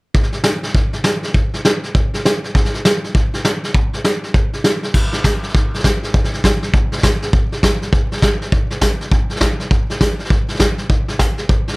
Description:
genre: rock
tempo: 201 BPM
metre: 4/4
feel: swing 62% on 8ths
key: none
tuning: none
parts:
  - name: vintage brush drum kit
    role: drums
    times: 0.1-11.8 s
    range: crash cymbal, hi-hat, kick drum, snare drum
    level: -14 LUFS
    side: equal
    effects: none
room: little or no reverb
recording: none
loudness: -14 LUFS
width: side -27 dB against mid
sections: 0.1-4.9 A section; 4.9-11.8 B section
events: none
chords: none

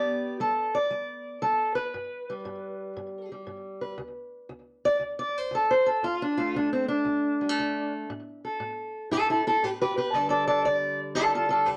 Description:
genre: acoustic country blues, solo or duo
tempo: 117 BPM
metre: 4/4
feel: swing 68% on 8ths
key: unclear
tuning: A4 = 435 Hz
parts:
  - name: fingerpicked steel-string acoustic guitar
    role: solo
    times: 0.0-11.8 s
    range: D2 to D5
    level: -28 LUFS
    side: equal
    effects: slapback echo
room: light reverb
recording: dry, close 1970s-style studio recording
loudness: -27 LUFS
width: mono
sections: 0.0-11.8 A section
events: steel-string acoustic guitar solo 0.0-11.8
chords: 0.0 G; 4.0 D5; 8.1 A5; 10.1 G5

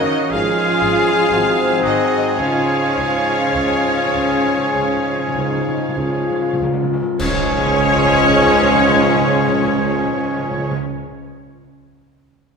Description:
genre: classical, slow romantic movement for symphony orchestra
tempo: 47-64 BPM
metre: 4/4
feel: rubato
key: Db major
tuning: A4 = 441 Hz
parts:
  - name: rich symphonic violin section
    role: melody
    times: 0.0-10.7 s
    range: Db5 to F5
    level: -23 LUFS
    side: left 4 dB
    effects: none
  - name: clear clarinet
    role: second line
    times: 0.0-10.7 s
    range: C4 to Db4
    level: -27 LUFS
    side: left 3 dB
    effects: none
  - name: clear oboe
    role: second line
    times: 0.0-10.8 s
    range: Db5 to F5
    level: -25 LUFS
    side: right 2 dB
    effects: none
  - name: dark studio violin section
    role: second line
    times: 0.0-10.7 s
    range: Ab3 to F5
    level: -26 LUFS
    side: left 3 dB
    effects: none
  - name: silver concert flute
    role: second line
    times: 0.0-10.7 s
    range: F4 to Db5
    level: -24 LUFS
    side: left 2 dB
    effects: none
  - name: dark bassoon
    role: accompaniment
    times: 0.0-10.7 s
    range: F3 to Bb3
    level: -27 LUFS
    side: equal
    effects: none
  - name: rich symphonic viola section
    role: accompaniment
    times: 0.0-10.8 s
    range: Db4 to F4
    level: -26 LUFS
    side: right 2 dB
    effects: none
  - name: mellow French horn section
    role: sustained chords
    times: 0.0-10.8 s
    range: C4 to Gb4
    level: -24 LUFS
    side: left 5 dB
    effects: none
  - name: warm trombone section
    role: sustained chords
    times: 0.0-10.8 s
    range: Ab2 to Ab3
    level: -26 LUFS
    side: right 3 dB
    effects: none
  - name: mellow tuba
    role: bass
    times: 0.0-10.7 s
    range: Ab1 to Db2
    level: -26 LUFS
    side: right 4 dB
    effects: none
  - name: warm symphonic cello section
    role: bass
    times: 0.0-10.7 s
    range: Db3 to Db4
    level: -29 LUFS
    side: right 1 dB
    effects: none
  - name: clear trumpet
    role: stabs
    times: 0.3-10.7 s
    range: Ab4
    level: -23 LUFS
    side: right 1 dB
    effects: none
  - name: rich symphonic double bass section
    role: bass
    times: 0.3-10.7 s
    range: Ab1 to Db2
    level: -29 LUFS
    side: right 3 dB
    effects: none
  - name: timpani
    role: percussion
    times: 2.4-10.8 s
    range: Db3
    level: -25 LUFS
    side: right 3 dB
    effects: none
  - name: clash cymbals and concert bass drum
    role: percussion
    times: 7.2-9.5 s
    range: none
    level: -28 LUFS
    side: left 1 dB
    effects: none
room: wet scoring stage reverb, RT60 2.0 s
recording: minimal, uncompressed stereo recording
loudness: -14 LUFS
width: side -5 dB against mid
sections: 0.0-7.2 A section; 7.2-11.8 B section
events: slowing down 0.0-7.2; timpani fill 2.4-7.2; band accent 7.2-8.3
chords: 0.3 Db/Ab; 1.3 Ab7; 2.4 Db

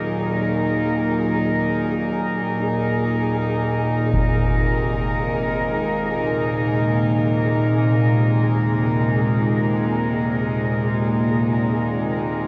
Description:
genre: dark ambient drone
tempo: free time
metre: none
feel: none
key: unclear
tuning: A4 = 439 Hz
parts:
  - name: warm chamber cello section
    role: sustained chords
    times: 0.0-12.5 s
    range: Bb2 to Bb4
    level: -24 LUFS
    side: equal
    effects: none
  - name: organ-like drone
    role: drone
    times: 0.0-12.5 s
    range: Eb2 to Bb2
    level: -24 LUFS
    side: equal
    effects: ensemble chorus, built-in reverb, phaser
  - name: flickering grainy texture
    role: texture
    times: 0.0-12.5 s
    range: Ab4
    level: -33 LUFS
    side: equal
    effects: built-in reverb
  - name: concert bass drum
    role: percussion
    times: 4.1-4.3 s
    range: none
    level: -28 LUFS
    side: equal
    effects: low-pass filter on kick
room: wet cathedral reverb, RT60 5.0 s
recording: worn, warbling old tape, cassette tape, warbly pitch drift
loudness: -21 LUFS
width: mono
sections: 0.0-12.5 A section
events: fade-in on synth texture 0.0-12.5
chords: 0.0 Ebm; 4.1 Abadd9

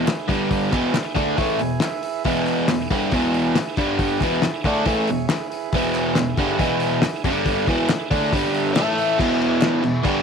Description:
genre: garage rock duo or trio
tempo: 139 BPM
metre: 4/4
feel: straight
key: unclear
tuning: A4 = 440 Hz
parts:
  - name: combo organ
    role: sustained chords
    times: 0.0-10.2 s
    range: D4 to G#5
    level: -29 LUFS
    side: right 11 dB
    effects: none
  - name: biting overdriven guitar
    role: riff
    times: 0.0-10.2 s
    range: E2 to D4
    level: -20 LUFS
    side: equal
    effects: none
  - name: cloth-damped thuddy drum kit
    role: drums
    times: 0.1-10.2 s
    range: crash cymbal, hi-hat, kick drum, snare drum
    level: -24 LUFS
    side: left 3 dB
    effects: none
  - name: group handclap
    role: percussion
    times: 0.1-9.7 s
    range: none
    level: -34 LUFS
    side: right 12 dB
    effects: none
room: light reverb, small room ambience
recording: 1960s-style stereo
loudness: -18 LUFS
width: side -6 dB against mid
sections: 0.0-9.2 A section; 9.2-10.2 B section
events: transistor combo organ fill 1.4-2.3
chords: 0.3 G5; 0.7 E; 3.8 G5; 4.2 E; 7.3 G5; 7.7 E; 8.3 G5; 8.8 A5; 9.2 E

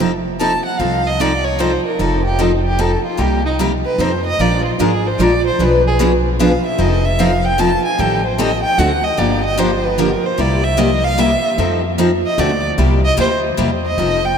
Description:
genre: acoustic string swing (jazz manouche)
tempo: 150 BPM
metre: 3/4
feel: swing 64% on 8ths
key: F mixolydian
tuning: A4 = 441 Hz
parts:
  - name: picked steel-string acoustic guitar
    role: accompaniment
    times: 0.0-14.2 s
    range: B2 to B4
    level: -19 LUFS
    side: left 4 dB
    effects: none
  - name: picked steel-string acoustic guitar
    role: accompaniment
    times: 0.0-14.2 s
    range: B2 to B4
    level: -21 LUFS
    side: right 5 dB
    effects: none
  - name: upright bass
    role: bass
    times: 0.0-14.4 s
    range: F1 to F2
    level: -20 LUFS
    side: equal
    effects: none
  - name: warm violin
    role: melody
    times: 0.4-14.4 s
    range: Eb4 to A5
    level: -18 LUFS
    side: right 1 dB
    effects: none
room: wet cathedral reverb, RT60 6.5 s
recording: in a vast, echoing space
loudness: -13 LUFS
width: side -7 dB against mid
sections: 0.0-14.0 A section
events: violin solo 0.0-14.0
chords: 0.0 F7; 3.2 Cm7; 4.0 F7; 4.4 Bb7; 5.6 Bdim7; 6.8 F7; 8.0 Am7b5; 8.8 D7b9; 9.2 Gm7; 10.4 C7; 11.6 F7; 12.4 D7; 12.8 C7

